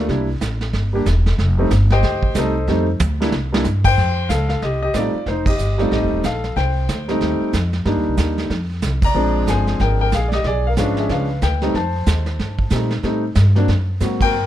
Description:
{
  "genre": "jazz piano trio",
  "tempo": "185 BPM",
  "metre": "4/4",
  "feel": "swing 61% on 8ths",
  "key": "F mixolydian",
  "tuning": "A4 = 441 Hz",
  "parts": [
    { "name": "warm grand piano", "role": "melody", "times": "0.0-14.5 s", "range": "F3 to Bb5", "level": "-20 LUFS", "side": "left 1 dB", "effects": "none" },
    { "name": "upright bass", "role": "bass", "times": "0.0-14.5 s", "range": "Eb1 to Bb2", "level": "-19 LUFS", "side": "equal", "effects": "none" },
    { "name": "vintage brush drum kit", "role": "drums", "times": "0.1-14.5 s", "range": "brushed snare drum, crash cymbal, hi-hat, kick drum, snare drum, toms", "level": "-24 LUFS", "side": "right 2 dB", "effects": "none" }
  ],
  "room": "little or no reverb",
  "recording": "close, detailed microphones",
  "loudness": "-16 LUFS",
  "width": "side -12 dB against mid",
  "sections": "0.0-4.0 A section; 4.0-14.5 B section",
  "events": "grand piano solo 0.0-4.0; drum fill 3.0-3.6; band accent 5.4, 9.0, 14.2",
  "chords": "0.1 C9; 1.4 F9; 3.3 C5; 4.0 F9; 7.9 Cm7; 8.5 F5; 9.2 Bb9; 10.4 Bdim7; 11.7 F9; 13.0 Am7b5; 13.7 Gbadd9"
}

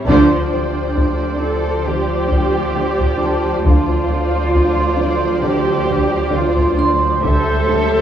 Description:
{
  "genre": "cinematic, suspense film score",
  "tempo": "67 BPM",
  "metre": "4/4",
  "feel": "straight",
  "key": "D minor",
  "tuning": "A4 = 439 Hz",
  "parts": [
    { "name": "muted studio violin section", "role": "melody", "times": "0.0-8.0 s", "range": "D5 to E5", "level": "-27 LUFS", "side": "left 2 dB", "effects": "none" },
    { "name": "muted studio violin section", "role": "second line", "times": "0.0-8.0 s", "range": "C5", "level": "-24 LUFS", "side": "equal", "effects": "none" },
    { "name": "muted studio viola section", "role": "accompaniment", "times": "0.0-8.0 s", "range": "F3 to G3", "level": "-24 LUFS", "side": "equal", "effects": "none" },
    { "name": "muted symphonic cello section", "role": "bass", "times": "0.0-8.0 s", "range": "D4 to A4", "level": "-20 LUFS", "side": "right 1 dB", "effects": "none" },
    { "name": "vibraphone with hard mallets", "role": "texture", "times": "0.0-8.0 s", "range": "G4 to C6", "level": "-26 LUFS", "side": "right 2 dB", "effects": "none" },
    { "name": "muted studio cello section", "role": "riff", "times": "0.1-8.0 s", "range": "D3 to D4", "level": "-21 LUFS", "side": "right 1 dB", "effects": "none" },
    { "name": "muted studio double bass section", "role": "bass", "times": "0.1-8.0 s", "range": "D2", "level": "-21 LUFS", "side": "right 1 dB", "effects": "none" },
    { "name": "taiko ensemble", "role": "drums", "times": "0.1-8.0 s", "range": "none", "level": "-19 LUFS", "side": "equal", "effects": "none" },
    { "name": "muted studio violin section", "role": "texture", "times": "7.2-8.0 s", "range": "E6 to G6", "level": "-28 LUFS", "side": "left 1 dB", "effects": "none" }
  ],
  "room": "moderate scoring stage reverb, RT60 1.9 s",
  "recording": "worn, warbling old tape, cassette tape, warbly pitch drift",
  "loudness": "-14 LUFS",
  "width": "side -10 dB against mid",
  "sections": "0.1-8.0 A section",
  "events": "band accent 0.1-1.0",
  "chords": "0.1 Dm7; 7.2 C/D"
}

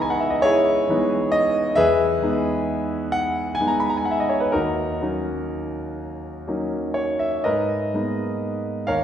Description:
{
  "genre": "classical, impressionist solo piano",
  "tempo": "40-46 BPM (dotted quarters)",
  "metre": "6/8",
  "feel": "rubato",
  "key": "G# minor",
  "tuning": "A4 = 440 Hz",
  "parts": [
    { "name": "clear concert grand piano", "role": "solo", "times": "0.0-9.0 s", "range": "C#2 to C#6", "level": "-20 LUFS", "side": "equal", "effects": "none" }
  ],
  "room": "wet concert hall reverb, RT60 2.1 s",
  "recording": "heard from further back in the room",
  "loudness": "-20 LUFS",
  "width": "side -9 dB against mid",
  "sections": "0.0-9.0 A section",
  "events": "none",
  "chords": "0.0 C#m9; 1.8 Emaj7; 4.5 D#m7; 7.5 G#madd9"
}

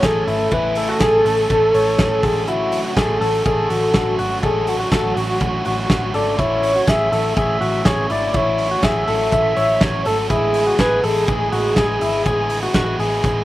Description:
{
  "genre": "jangly indie pop",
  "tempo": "123 BPM",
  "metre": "4/4",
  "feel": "straight",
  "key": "unclear",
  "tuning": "A4 = 440 Hz",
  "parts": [
    { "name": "soft octave-layered synth lead", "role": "melody", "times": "0.0-13.4 s", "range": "F#4 to E5", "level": "-19 LUFS", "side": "equal", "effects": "chorus, slapback echo" },
    { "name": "biting overdriven guitar", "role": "accompaniment", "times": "0.0-13.4 s", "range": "A2 to G#4", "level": "-26 LUFS", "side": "right 3 dB", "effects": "slapback echo" },
    { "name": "electric guitar through a small old amp", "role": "arpeggios", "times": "0.0-13.4 s", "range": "E4 to C#5", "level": "-22 LUFS", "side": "left 3 dB", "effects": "none" },
    { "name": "vintage muted picked electric bass", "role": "bass", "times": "0.0-13.4 s", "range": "G#1 to A1", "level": "-26 LUFS", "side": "equal", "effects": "none" },
    { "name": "loose indie drum kit", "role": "drums", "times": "0.0-13.4 s", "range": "hi-hat, kick drum, snare drum", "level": "-22 LUFS", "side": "equal", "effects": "none" }
  ],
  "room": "little or no reverb",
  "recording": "none",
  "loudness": "-15 LUFS",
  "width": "side -15 dB against mid",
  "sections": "0.0-13.4 A section",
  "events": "none",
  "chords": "0.0 Amaj7; 2.2 Dmaj7; 6.4 F#m7; 10.3 E7"
}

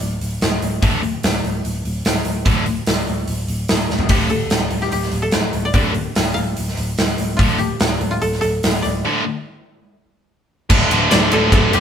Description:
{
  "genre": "hard rock",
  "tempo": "146 BPM",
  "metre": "4/4",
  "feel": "straight",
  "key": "D minor",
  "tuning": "A4 = 440 Hz",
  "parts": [
    { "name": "koto", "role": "melody", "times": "0.0-1.4, 4.1-11.8 s", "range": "F4 to F5", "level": "-23 LUFS", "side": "left 1 dB", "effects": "none" },
    { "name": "hollow-body short-scale picked electric bass", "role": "bass", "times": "0.0-11.8 s", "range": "D1", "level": "-23 LUFS", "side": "equal", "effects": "none" },
    { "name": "big rock drum kit", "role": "drums", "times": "0.0-11.8 s", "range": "crash cymbal, hi-hat, kick drum, ride cymbal, snare drum, toms", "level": "-18 LUFS", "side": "equal", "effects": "none" },
    { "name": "tight distorted guitar", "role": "riff", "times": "0.8-11.8 s", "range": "D2 to D3", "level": "-22 LUFS", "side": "left 8 dB", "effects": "distortion" },
    { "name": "tight distorted guitar", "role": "riff", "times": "0.8-11.8 s", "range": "D2 to D3", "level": "-22 LUFS", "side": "right 7 dB", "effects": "distortion" },
    { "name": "distorted electric guitar", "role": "riff", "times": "10.7-11.8 s", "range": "D2 to F4", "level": "-24 LUFS", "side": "equal", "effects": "none" }
  ],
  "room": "light reverb",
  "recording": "band playing live in one room",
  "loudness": "-16 LUFS",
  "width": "side -8 dB against mid",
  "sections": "0.0-10.7 A section; 10.7-11.8 B section",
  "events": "drum fill 3.9; break 9.1-10.7",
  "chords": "0.0 Dm"
}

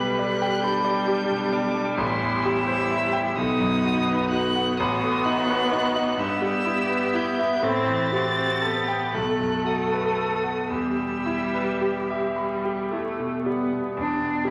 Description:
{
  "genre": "classical, slow romantic movement for piano quartet",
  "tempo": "36-45 BPM (dotted quarters)",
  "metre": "6/8",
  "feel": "rubato",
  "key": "E minor",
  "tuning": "A4 = 442 Hz",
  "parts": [
    { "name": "rich violin", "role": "melody", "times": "0.0-14.5 s", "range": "G5 to A6", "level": "-33 LUFS", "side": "equal", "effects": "none" },
    { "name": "warm cello", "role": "second line", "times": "0.0-14.5 s", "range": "D4 to B4", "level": "-32 LUFS", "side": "equal", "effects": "none" },
    { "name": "bright concert grand piano", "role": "accompaniment", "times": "0.0-14.5 s", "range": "A1 to B5", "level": "-27 LUFS", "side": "equal", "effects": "none" },
    { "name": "rich viola", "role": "accompaniment", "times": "0.0-14.0 s", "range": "G3 to C4", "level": "-30 LUFS", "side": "equal", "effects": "none" }
  ],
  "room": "wet recital hall reverb, RT60 1.4 s",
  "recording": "vinyl crackle",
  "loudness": "-24 LUFS",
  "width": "mono",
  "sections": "0.0-14.0 A section",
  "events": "none",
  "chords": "0.0 G/B; 2.0 Am7; 3.4 B; 4.8 B7/A; 6.2 Em/G; 7.6 Am7; 9.1 B7; 10.7 Em"
}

